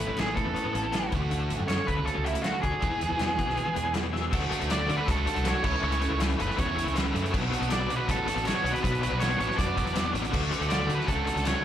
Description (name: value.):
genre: indie rock.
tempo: 160 BPM.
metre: 4/4.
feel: straight.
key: unclear.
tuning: A4 = 440 Hz.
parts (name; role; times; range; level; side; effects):
octave-fuzz lead guitar; melody; 0.0-11.6 s; E4 to D5; -31 LUFS; right 2 dB; distortion, slapback echo, analog delay.
overdriven electric guitar; riff; 0.0-11.6 s; E2 to G#4; -33 LUFS; right 5 dB; analog chorus, slapback echo, analog delay.
raw garage guitar; riff; 0.0-11.6 s; B2 to E5; -33 LUFS; left 7 dB; overdrive, tremolo, slapback echo.
fuzz fingered electric bass; bass; 0.0-11.5 s; F#1 to E3; -31 LUFS; equal; overdrive.
loose indie drum kit; drums; 0.2-11.6 s; crash cymbal, hi-hat, kick drum, snare drum; -32 LUFS; equal; none.
group handclap; percussion; 0.2-11.5 s; none; -43 LUFS; left 2 dB; none.
room: light reverb.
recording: live gig heard through the venue's PA, club reverb.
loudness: -25 LUFS.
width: side -10 dB against mid.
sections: 0.0-4.3 A section; 4.3-11.6 B section.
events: drum fill 4.1.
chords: 0.0 Aadd9; 1.1 Dmaj7; 2.8 E; 4.3 D; 5.6 A; 7.3 Bm7; 10.3 D.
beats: 0.18 0.56 0.94 | 1.32 1.70 2.07 2.45 | 2.83 3.20 3.58 3.96 | 4.33 4.71 5.08 5.46 | 5.83 6.21 6.58 6.96 | 7.33 7.71 8.08 8.46 | 8.83 9.21 9.58 9.96 | 10.33 10.71 11.08 11.46.